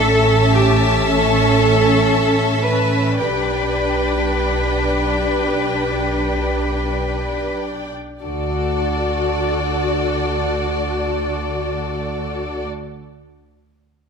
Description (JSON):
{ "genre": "cinematic, emotional film score for orchestra", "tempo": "free time", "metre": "none", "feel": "none", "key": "D major", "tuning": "A4 = 440 Hz", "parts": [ { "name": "rich studio violin section", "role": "melody", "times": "0.0-12.6 s", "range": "D5 to A5", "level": "-27 LUFS", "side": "left 6 dB", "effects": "none" }, { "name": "rich studio violin section", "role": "second line", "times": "0.0-12.6 s", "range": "A4 to E5", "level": "-26 LUFS", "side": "left 2 dB", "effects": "none" }, { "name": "clear French horn section", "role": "sustained chords", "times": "0.0-12.6 s", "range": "C#4 to A4", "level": "-24 LUFS", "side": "left 4 dB", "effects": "none" }, { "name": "rich studio cello section", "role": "bass", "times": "0.0-12.6 s", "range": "G4 to D5", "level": "-22 LUFS", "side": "right 1 dB", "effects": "none" }, { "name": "rich studio double bass section", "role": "bass", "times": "0.0-12.6 s", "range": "A1 to D2", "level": "-22 LUFS", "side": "right 2 dB", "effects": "none" }, { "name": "warm studio viola section", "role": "accompaniment", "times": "0.1-12.6 s", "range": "C#4 to F#4", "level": "-24 LUFS", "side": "right 1 dB", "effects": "none" } ], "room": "moderate scoring stage reverb, RT60 1.6 s", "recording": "none", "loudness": "-16 LUFS", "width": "side -6 dB against mid", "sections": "0.0-8.2 A section; 8.2-13.5 B section", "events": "slowing down 0.0-8.2", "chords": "0.0 A; 3.2 G/B; 8.2 D", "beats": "free time" }